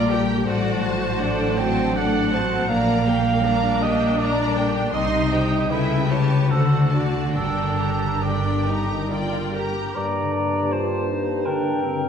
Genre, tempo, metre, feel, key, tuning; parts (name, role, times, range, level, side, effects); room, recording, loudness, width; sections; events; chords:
classical, slow romantic movement for symphony orchestra; 66-83 BPM; 3/4; rubato; G minor; A4 = 440 Hz
rich studio violin section; melody; 0.0-10.0 s; F#5 to C6; -32 LUFS; left 1 dB
mellow cor anglais; second line; 0.0-12.1 s; G4 to G5; -26 LUFS; right 2 dB
warm studio violin section; second line; 0.0-10.0 s; Eb4 to E5; -29 LUFS; equal
rich studio viola section; accompaniment; 0.0-10.0 s; Bb3 to G4; -27 LUFS; left 1 dB
concert harp; arpeggios; 0.0-12.1 s; G2 to G4; -26 LUFS; left 5 dB
clear studio double bass section; bass; 0.0-9.8 s; G1 to D2; -28 LUFS; right 3 dB
rich studio cello section; bass; 0.0-9.8 s; G2 to D3; -26 LUFS; right 1 dB
clear clarinet; second line; 10.0-12.1 s; C4 to F4; -30 LUFS; right 1 dB
mellow concert flute; second line; 10.0-12.1 s; G5 to Bb5; -29 LUFS; left 2 dB
dark bassoon; accompaniment; 10.0-12.1 s; G2; -27 LUFS; right 1 dB
mellow French horn section; sustained chords; 10.0-12.1 s; Bb3 to G4; -32 LUFS; left 2 dB
wet recital hall reverb, RT60 1.5 s; recorded in a church or concert hall; -19 LUFS; side -7 dB against mid
0.0-10.0 A section; 10.0-12.1 B section
0.5 D7/A; 2.7 Gm/Bb; 4.9 Cm; 5.7 A7/C#; 6.5 D7; 7.3 Gm